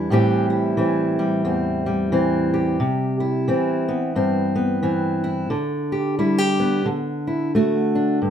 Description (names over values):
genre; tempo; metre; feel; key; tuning
folk, solo fingerstyle acoustic guitar; 89 BPM; 4/4; swing 60% on 8ths; unclear; A4 = 440 Hz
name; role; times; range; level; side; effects
fingerpicked steel-string acoustic guitar; solo; 0.0-8.3 s; E2 to G4; -18 LUFS; equal; none
room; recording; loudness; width
wet studio reverb, RT60 0.6 s; band playing live in one room; -19 LUFS; side -8 dB against mid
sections
0.0-8.2 A section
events
none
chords
0.1 Am7; 2.8 Cmaj7; 5.5 G/D; 6.9 D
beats
| 0.10 0.77 1.45 2.12 | 2.80 3.48 4.15 4.83 | 5.50 6.18 6.86 7.53 | 8.21